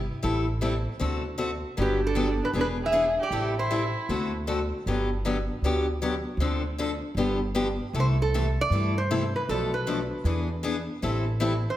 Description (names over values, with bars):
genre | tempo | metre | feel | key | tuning
acoustic string swing (jazz manouche) | 156 BPM | 4/4 | swing 63% on 8ths | G major | A4 = 440 Hz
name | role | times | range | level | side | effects
upright bass | bass | 0.0-11.6 s | E1 to G2 | -29 LUFS | equal | none
picked steel-string acoustic guitar | accompaniment | 0.2-11.5 s | B2 to A4 | -28 LUFS | left 2 dB | none
metal-body resonator slide guitar | melody | 1.8-4.3, 8.0-11.8 s | G4 to E5 | -28 LUFS | right 1 dB | none
warm violin | second line | 1.8-4.3 s | B3 to G#4 | -32 LUFS | right 5 dB | none
room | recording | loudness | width
wet recital hall reverb, RT60 1.8 s | none | -24 LUFS | side -13 dB against mid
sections
0.0-7.9 A section; 7.9-11.8 B section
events
none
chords
0.2 Am7; 1.0 D7; 1.8 Gmaj7; 2.5 E7; 3.3 Am7; 4.1 D7; 4.9 Gmaj7; 6.4 Dm7; 7.2 G7; 7.9 C69; 9.5 Bm7b5; 10.3 E7; 11.0 Am7